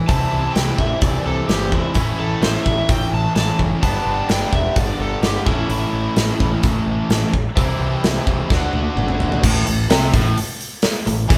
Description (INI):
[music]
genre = blues rock power trio and southern rock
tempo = 128 BPM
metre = 4/4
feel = straight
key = unclear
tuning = A4 = 441 Hz
[part]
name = distorted electric guitar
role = riff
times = 0.0-11.4 s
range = G2 to F#4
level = -24 LUFS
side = equal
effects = overdrive
[part]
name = overdriven slide guitar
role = melody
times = 0.1-6.6 s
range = E4 to A5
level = -27 LUFS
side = equal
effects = none
[part]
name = growling picked electric bass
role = bass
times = 0.1-11.4 s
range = E1 to E2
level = -26 LUFS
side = equal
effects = overdrive
[part]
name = big rock drum kit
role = drums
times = 0.1-11.4 s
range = crash cymbal, hi-hat, kick drum, snare drum, toms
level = -22 LUFS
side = equal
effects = none
[sound]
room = moderate studio reverb, RT60 0.7 s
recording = band playing live in one room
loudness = -19 LUFS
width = mono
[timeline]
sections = 0.0-9.4 A section; 9.4-11.4 B section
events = drum fill 8.5-9.4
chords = 0.1 C; 2.0 A; 3.8 G; 5.5 A; 7.6 C; 8.5 D; 9.4 A5